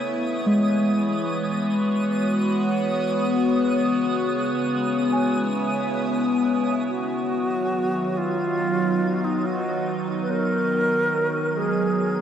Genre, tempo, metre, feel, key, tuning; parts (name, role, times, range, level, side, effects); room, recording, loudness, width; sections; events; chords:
ambient; 71 BPM; 4/4; straight; A4 = 440 Hz
evolving wavetable pad; sustained chords; 0.0-12.2 s; Db3 to C#5; -23 LUFS; left 1 dB; chorus, built-in reverb, phaser
muted felt-like synth keys; arpeggios; 0.0-12.2 s; G#3 to Ab5; -27 LUFS; equal; chorus, analog delay
twinkling granular texture; texture; 0.0-12.2 s; Eb6 to D#7; -34 LUFS; right 2 dB; built-in reverb, lush chorus
alto flute; melody; 6.9-12.2 s; D#4 to B4; -24 LUFS; right 1 dB; analog delay
wet huge ambient reverb, RT60 7.4 s; dreamy mix soaked in reverb; -20 LUFS; side -9 dB against mid
0.0-6.9 A section; 6.9-12.2 B section
0.1 Eadd9; 3.4 Dbm7; 6.9 B